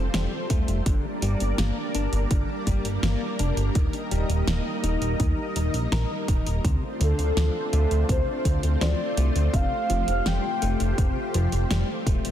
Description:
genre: synthwave.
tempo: 83 BPM.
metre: 4/4.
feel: straight.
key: unclear.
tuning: A4 = 440 Hz.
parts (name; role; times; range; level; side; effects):
analog string pad; sustained chords; 0.0-12.3 s; G3 to Eb5; -31 LUFS; equal; ensemble chorus, sidechain pumping, shimmer reverb.
chorused synth bass; bass; 0.0-12.3 s; Eb1 to Eb2; -24 LUFS; equal; none.
clean electric guitar; arpeggios; 0.1-12.3 s; C3 to Bb4; -33 LUFS; left 4 dB; vintage 12-bit sampler grit, ping-pong delay, shimmer reverb.
pop drum kit; drums; 0.1-12.3 s; hi-hat, snare drum; -32 LUFS; equal; none.
electronic kick drum; drums; 0.5-12.2 s; none; -24 LUFS; equal; none.
expressive synth lead; melody; 7.0-11.3 s; A4 to G5; -29 LUFS; equal; lush chorus, digital delay, shimmer reverb.
room: light reverb.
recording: dense, heavily limited modern master.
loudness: -22 LUFS.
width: side -11 dB against mid.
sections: 0.0-12.3 A section.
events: none.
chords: 0.0 Fadd9; 0.9 Gm; 3.8 Eb; 6.6 Dm7; 9.5 Fadd9.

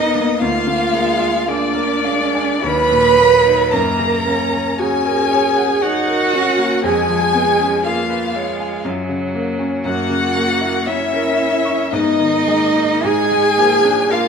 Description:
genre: classical, slow romantic movement for piano quintet.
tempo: 50-60 BPM.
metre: 3/4.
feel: rubato.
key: unclear.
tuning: A4 = 439 Hz.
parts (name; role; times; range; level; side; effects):
rich violin; melody; 0.0-14.3 s; D5 to Cb6; -20 LUFS; left 7 dB; none.
dark cello; second line; 0.0-14.3 s; D4 to Cb5; -17 LUFS; right 5 dB; none.
rich violin; second line; 0.0-14.3 s; D5 to Cb6; -24 LUFS; left 3 dB; none.
clear concert grand piano; accompaniment; 0.0-14.3 s; D2 to Db6; -22 LUFS; left 2 dB; none.
warm viola; accompaniment; 0.0-14.3 s; F3 to Eb4; -24 LUFS; right 1 dB; none.
room: wet recital hall reverb, RT60 1.6 s.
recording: minimal, uncompressed stereo recording.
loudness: -14 LUFS.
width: side -6 dB against mid.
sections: 0.0-14.3 A section.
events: none.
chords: 0.4 Bb7/D; 2.6 Ebm; 3.7 Gb; 6.8 Db7/F; 8.9 Gb; 9.9 Gb7; 11.9 Abm; 13.1 Bb7/Ab.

